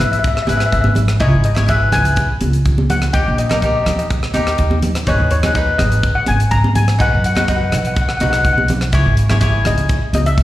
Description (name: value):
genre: calypso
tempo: 124 BPM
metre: 4/4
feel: straight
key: unclear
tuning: A4 = 440 Hz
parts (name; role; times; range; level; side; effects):
- steel pan; melody; 0.0-10.4 s; C#5 to A#5; -21 LUFS; left 3 dB; slapback echo
- cavaquinho; accompaniment; 0.0-10.0 s; D#4 to C#5; -20 LUFS; left 1 dB; slapback echo
- upright bass; bass; 0.0-10.4 s; G#1 to F#2; -16 LUFS; equal; none
- tight funk drum kit; drums; 0.0-10.4 s; hi-hat, kick drum, rim click; -20 LUFS; equal; none
- congas; percussion; 0.0-10.3 s; none; -23 LUFS; right 1 dB; slapback echo
room: small room ambience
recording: live gig heard through the venue's PA, recital hall reverb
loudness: -13 LUFS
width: side -15 dB against mid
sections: 0.0-10.4 A section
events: none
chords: 0.0 E/G#; 1.2 C#m; 3.1 D#; 5.1 G#m; 7.0 B; 8.9 C#m